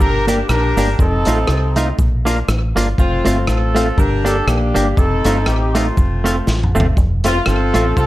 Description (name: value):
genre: ska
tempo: 120 BPM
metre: 4/4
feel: swing 56% on 8ths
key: F major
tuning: A4 = 440 Hz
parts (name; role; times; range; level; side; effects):
- warm horn section; melody; 0.0-8.1 s; A3 to Bb4; -19 LUFS; equal; slapback echo, plate reverb
- deep dub fingered electric bass; bass; 0.0-8.1 s; F1 to C2; -18 LUFS; equal; none
- crunchy breakbeat drum kit; drums; 0.0-8.1 s; hi-hat, kick drum, rim click, snare drum, toms; -19 LUFS; equal; none
- cabasa; percussion; 0.0-8.1 s; none; -35 LUFS; right 6 dB; none
- semi-hollow electric guitar; accompaniment; 0.3-7.9 s; A3 to G4; -21 LUFS; right 2 dB; slapback echo, plate reverb
- percussive tonewheel organ; stabs; 0.3-7.9 s; A3 to Bb4; -27 LUFS; left 4 dB; none
room: light reverb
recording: none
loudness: -13 LUFS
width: side -16 dB against mid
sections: 0.0-7.0 A section; 7.0-8.1 B section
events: drum fill 6.5-7.0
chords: 0.0 Gm; 1.0 F7; 2.0 Bb; 3.0 F; 4.0 Gm; 5.0 F7; 6.0 F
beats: 0.00 0.49 | 0.99 1.49 1.99 2.49 | 2.98 3.48 3.98 4.48 | 4.98 5.48 5.98 6.47 | 6.97 7.47 7.97